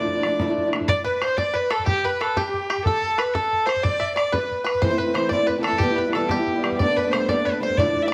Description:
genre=celtic folk, Celtic jig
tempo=122 BPM (dotted quarters)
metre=6/8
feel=straight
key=unclear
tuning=A4 = 440 Hz
part: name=dark fiddle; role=melody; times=0.0-8.1 s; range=G4 to E5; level=-25 LUFS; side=equal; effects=none
part: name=accordion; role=second line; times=0.0-8.1 s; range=F4 to D5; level=-33 LUFS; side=equal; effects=light tremolo tuning, slapback echo
part: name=bluegrass banjo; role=second line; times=0.0-8.1 s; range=G4 to E5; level=-33 LUFS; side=equal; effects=none
part: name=fingerpicked acoustic archtop guitar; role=accompaniment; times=0.0-0.9, 4.8-8.1 s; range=D2 to E4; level=-26 LUFS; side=equal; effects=none
part: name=bodhran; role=percussion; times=0.1-8.0 s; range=none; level=-30 LUFS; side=equal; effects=none
room=moderate recital hall reverb, RT60 1.6 s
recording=close, detailed microphones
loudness=-22 LUFS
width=mono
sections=0.9-8.1 A section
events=none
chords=0.0 Dmadd9; 0.9 N.C.; 4.8 Am; 5.8 Em; 6.8 Gadd9

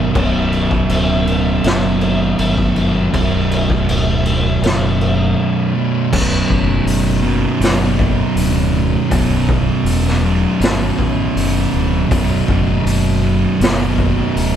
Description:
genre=stoner and doom metal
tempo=80 BPM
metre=4/4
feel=straight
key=B minor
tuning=A4 = 438 Hz
part: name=fuzz guitar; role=riff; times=0.0-14.6 s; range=B1 to B2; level=-21 LUFS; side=left 7 dB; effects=distortion
part: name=thick fuzz guitar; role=riff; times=0.0-14.6 s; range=B1 to B2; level=-17 LUFS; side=right 6 dB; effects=distortion
part: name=fuzz fingered electric bass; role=bass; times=0.0-14.6 s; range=B0 to A1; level=-19 LUFS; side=left 1 dB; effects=overdrive
part: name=raw garage drum kit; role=drums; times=0.2-14.5 s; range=crash cymbal, hi-hat, kick drum, snare drum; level=-19 LUFS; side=left 1 dB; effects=none
room=light reverb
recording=band playing live in one room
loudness=-13 LUFS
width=side -9 dB against mid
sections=0.0-6.1 A section; 6.1-14.6 B section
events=break 5.4-6.1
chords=0.0 Bm

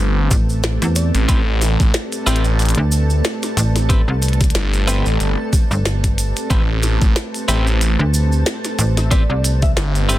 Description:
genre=glitch hop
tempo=92 BPM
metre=4/4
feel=swing 56% on 16ths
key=A minor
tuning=A4 = 440 Hz
part: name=dark analog pad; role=sustained chords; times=0.0-10.2 s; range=A3 to D5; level=-28 LUFS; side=right 3 dB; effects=chorus, sidechain pumping
part: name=phased detuned saw bass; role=bass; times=0.0-10.2 s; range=G1 to A1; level=-16 LUFS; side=equal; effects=phaser, tube saturation
part: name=granular cloud pad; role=texture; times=0.0-10.2 s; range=C4 to A5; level=-27 LUFS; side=equal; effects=built-in reverb, sidechain pumping
part: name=slap-like FM bass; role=bass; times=0.3-9.7 s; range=G1 to E2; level=-16 LUFS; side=equal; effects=none
part: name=electronic kick drum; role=drums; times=0.3-9.7 s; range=none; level=-15 LUFS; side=equal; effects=overdrive, small room ambience
part: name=cabasa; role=percussion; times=0.3-10.2 s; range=none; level=-28 LUFS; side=right 2 dB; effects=none
part: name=glitchy drum kit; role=drums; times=0.6-10.2 s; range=hi-hat, snare drum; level=-23 LUFS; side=left 1 dB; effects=overdrive, small room ambience
part: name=woody wave-folded pluck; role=melody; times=1.0-1.6, 9.0-9.9 s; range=D5 to E5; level=-29 LUFS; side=left 1 dB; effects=ensemble chorus, digital delay
part: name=twelve-string electric guitar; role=stabs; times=1.3-10.2 s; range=C4 to B4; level=-24 LUFS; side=equal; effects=sidechain pumping, digital delay
room=little or no reverb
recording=dense, heavily limited modern master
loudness=-14 LUFS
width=side -15 dB against mid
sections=0.0-10.2 A section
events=none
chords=0.0 Am9

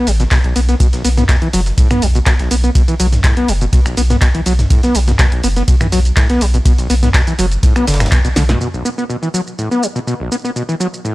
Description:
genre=acid house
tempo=123 BPM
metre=4/4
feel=straight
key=B minor pentatonic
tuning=A4 = 435 Hz
part: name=overdriven acid bass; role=riff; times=0.0-11.1 s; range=B1 to B3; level=-17 LUFS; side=equal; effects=wide subtle chorus, sidechain pumping, tape echo
part: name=warm sub bass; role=bass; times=0.1-8.5 s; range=F#1 to B1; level=-14 LUFS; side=equal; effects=sidechain pumping
part: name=breakbeat sampler-style drum kit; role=drums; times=0.1-8.5 s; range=hi-hat, ride cymbal, snare drum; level=-29 LUFS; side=right 2 dB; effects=sidechain pumping on cymbals, high-pass filter on cymbals, studio reverb, high-pass filter on snare, sidechain pumping on hats, high-pass filter on hats
part: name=punchy analog drum machine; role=drums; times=0.1-11.1 s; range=finger snaps, handclaps, hi-hat, shaker, snare drum, toms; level=-20 LUFS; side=equal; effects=studio reverb
part: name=electronic kick drum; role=drums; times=0.3-8.2 s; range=none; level=-13 LUFS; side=equal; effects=studio reverb
room=little or no reverb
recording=dry, gritty hardware recording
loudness=-11 LUFS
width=side -18 dB against mid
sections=0.0-8.6 A section; 8.6-11.1 B section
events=band accent 8.1; drum fill 8.4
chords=0.0 B5

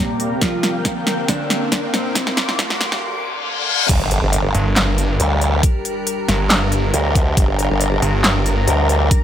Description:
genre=heavy wobble dubstep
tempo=138 BPM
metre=4/4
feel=half-time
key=G minor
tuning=A4 = 438 Hz
part: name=mellow electric guitar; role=melody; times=0.0-3.8 s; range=A2 to F4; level=-26 LUFS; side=right 1 dB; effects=analog chorus, tape echo
part: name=evolving wavetable pad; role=sustained chords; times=0.1-9.2 s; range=D2 to Bb4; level=-26 LUFS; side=left 1 dB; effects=chorus, built-in reverb, sidechain pumping
part: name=riser, reverse cymbal and impact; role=sound effects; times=1.0-5.6 s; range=none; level=-24 LUFS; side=left 2 dB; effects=none
part: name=granular cloud pad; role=texture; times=0.0-9.2 s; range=C4 to D6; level=-26 LUFS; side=equal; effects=built-in reverb, sidechain pumping
part: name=big-room dance drum kit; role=drums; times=0.2-9.2 s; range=crash cymbal, handclaps, hi-hat, snare drum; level=-20 LUFS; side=equal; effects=overdrive
part: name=electronic kick drum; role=drums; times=0.4-9.2 s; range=none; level=-17 LUFS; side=equal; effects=overdrive
part: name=formant-sweep wobble bass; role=bass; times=3.9-9.1 s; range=G1 to D2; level=-16 LUFS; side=equal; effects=chorus, overdrive
part: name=snarling distorted saw bass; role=bass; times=4.5-8.7 s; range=G1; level=-18 LUFS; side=equal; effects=distortion, overdrive
room=light reverb, digital ambience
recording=high-pass filter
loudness=-15 LUFS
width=side -10 dB against mid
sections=0.0-3.9 A section; 3.9-9.2 B section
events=build-up 0.0-3.9; drum fill 0.0-3.0; filter sweep 0.0-3.9; riser 1.0-3.0; reverse cymbal 3.0-3.9; drop 3.9-9.2; impact 3.9-5.6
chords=0.4 Bbadd9; 2.2 Dm7; 3.9 Gm

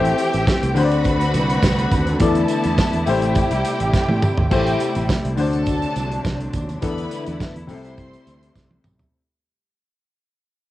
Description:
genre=disco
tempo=104 BPM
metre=4/4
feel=straight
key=A dorian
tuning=A4 = 440 Hz
part: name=rich studio violin section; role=second line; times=0.0-8.8 s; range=G4 to C6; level=-27 LUFS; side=right 1 dB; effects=cassette tape
part: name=clear grand piano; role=accompaniment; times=0.0-9.2 s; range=C3 to D5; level=-23 LUFS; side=left 4 dB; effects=cassette tape
part: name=dark studio string section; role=sustained chords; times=0.0-9.1 s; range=C3 to G4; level=-25 LUFS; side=equal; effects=cassette tape
part: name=fingered electric bass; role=bass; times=0.0-9.1 s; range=G#1 to A2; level=-23 LUFS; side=right 1 dB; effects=none
part: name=warm soul drum kit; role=drums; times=0.0-9.1 s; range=crash cymbal, hi-hat, kick drum, snare drum, toms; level=-22 LUFS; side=right 1 dB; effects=cassette tape
part: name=tambourine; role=percussion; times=0.2-9.1 s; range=none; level=-41 LUFS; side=right 10 dB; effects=none
room=moderate booth ambience, RT60 0.2 s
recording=home recording on cassette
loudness=-17 LUFS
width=side -15 dB against mid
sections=0.0-4.5 A section; 4.5-9.1 B section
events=drum fill 3.9-4.5, 8.6-9.1; fade-out 4.5-9.1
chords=0.0 Am7; 0.8 D7; 2.2 E7sus4; 3.1 Am7; 5.4 D7; 6.8 E7sus4; 7.7 C6

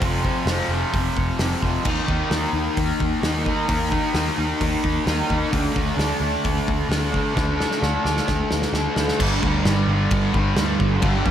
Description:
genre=rock, shoegaze and dream pop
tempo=131 BPM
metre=4/4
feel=straight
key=unclear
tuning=A4 = 442 Hz
part: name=fuzz guitar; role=riff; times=0.0-11.3 s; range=F2 to Eb4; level=-22 LUFS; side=equal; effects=distortion, lush chorus
part: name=vintage muted picked electric bass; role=bass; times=0.0-11.3 s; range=F1 to F2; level=-25 LUFS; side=equal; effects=none
part: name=loose indie drum kit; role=drums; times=0.0-11.3 s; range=crash cymbal, hi-hat, kick drum, snare drum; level=-26 LUFS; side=equal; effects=none
room=wet lush hall reverb, RT60 1.7 s, small room reverb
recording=dreamy mix soaked in reverb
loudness=-19 LUFS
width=side -10 dB against mid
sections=0.0-9.2 A section; 9.2-11.3 B section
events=drum fill 7.4-9.2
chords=0.0 F5; 1.9 Eb5; 5.5 D5; 9.2 G5

